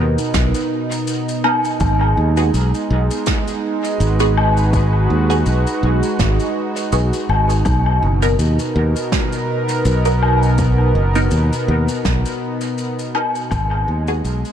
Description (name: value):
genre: ambient dub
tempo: 82 BPM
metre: 4/4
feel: swing 56% on 16ths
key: G# minor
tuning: A4 = 441 Hz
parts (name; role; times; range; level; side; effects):
- warm analog pad; sustained chords; 0.0-14.5 s; B2 to B4; -21 LUFS; right 2 dB; chorus
- modern bright fingered electric bass; bass; 0.0-14.4 s; F#1 to D#2; -16 LUFS; equal; none
- shaker, snare drum and woodblock; drums; 0.2-14.5 s; none; -24 LUFS; left 2 dB; dub echo
- electronic kick drum; drums; 0.3-13.7 s; none; -21 LUFS; equal; overdrive
- filtered dub chord stab; stabs; 1.4-14.2 s; B3 to A#4; -25 LUFS; right 2 dB; phaser, lush chorus, dub echo
room: light reverb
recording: none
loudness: -15 LUFS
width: side -9 dB against mid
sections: 0.0-14.5 A section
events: fade-out 11.6-14.5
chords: 0.0 Bmaj7; 1.8 G#m7; 7.7 Bmaj7; 13.5 G#m7